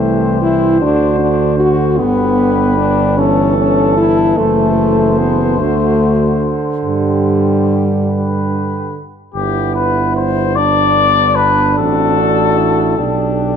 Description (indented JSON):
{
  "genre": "classical, brass quintet",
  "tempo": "50 BPM (dotted quarters)",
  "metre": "6/8",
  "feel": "rubato",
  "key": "G major",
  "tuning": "A4 = 441 Hz",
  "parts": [
    { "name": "mellow trumpet", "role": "melody", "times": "0.0-13.6 s", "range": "G4 to D5", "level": "-18 LUFS", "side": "left 6 dB", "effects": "none" },
    { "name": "dark flugelhorn", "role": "second line", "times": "0.0-13.6 s", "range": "D4 to A4", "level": "-21 LUFS", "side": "right 5 dB", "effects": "none" },
    { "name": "clear French horn", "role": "accompaniment", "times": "0.0-13.6 s", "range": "G3 to F#4", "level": "-16 LUFS", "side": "left 5 dB", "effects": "none" },
    { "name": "clear trombone", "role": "accompaniment", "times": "0.0-13.6 s", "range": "D3 to D4", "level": "-20 LUFS", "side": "right 4 dB", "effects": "none" },
    { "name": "warm tuba", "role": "bass", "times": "0.0-13.6 s", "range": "F#1 to G2", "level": "-17 LUFS", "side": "right 4 dB", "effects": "none" }
  ],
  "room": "moderate recital hall reverb, RT60 1.5 s",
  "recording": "dark, warm production, nothing above 10.4 kHz",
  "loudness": "-11 LUFS",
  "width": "side -7 dB against mid",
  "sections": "0.0-9.3 A section; 9.3-13.6 B section",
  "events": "none",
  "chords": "0.0 Am7/C; 0.8 D7; 2.0 G; 3.2 A5/G; 4.4 F#m7b5; 5.6 D7; 6.8 G; 11.8 D/A; 13.0 G/B"
}